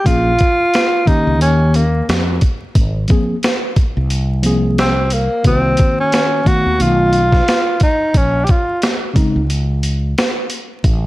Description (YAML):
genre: hip hop, jazz-hop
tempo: 89 BPM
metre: 4/4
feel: swing 58% on 16ths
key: unclear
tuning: A4 = 441 Hz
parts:
  - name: breathy tenor saxophone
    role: melody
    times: 0.0-8.8 s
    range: Bb3 to G4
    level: -16 LUFS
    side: equal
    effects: none
  - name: tine electric piano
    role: accompaniment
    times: 0.0-9.4 s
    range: Db3 to F5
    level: -19 LUFS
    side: left 1 dB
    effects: medium stereo tremolo
  - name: fretless electric bass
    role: bass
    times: 0.1-11.1 s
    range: Ab1 to F2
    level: -16 LUFS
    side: equal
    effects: none
  - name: boom bap sampler-style drum kit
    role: drums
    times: 0.1-11.0 s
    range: hi-hat, kick drum, snare drum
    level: -16 LUFS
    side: equal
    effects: none
room: digital ambience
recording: vinyl crackle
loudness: -12 LUFS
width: side -17 dB against mid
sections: 0.0-11.1 A section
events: tenor saxophone solo 0.0-11.1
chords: 0.1 Bbm7; 1.4 Eb7; 2.8 Ab69; 5.5 Cm7b5; 6.8 B7#11; 8.1 N.C.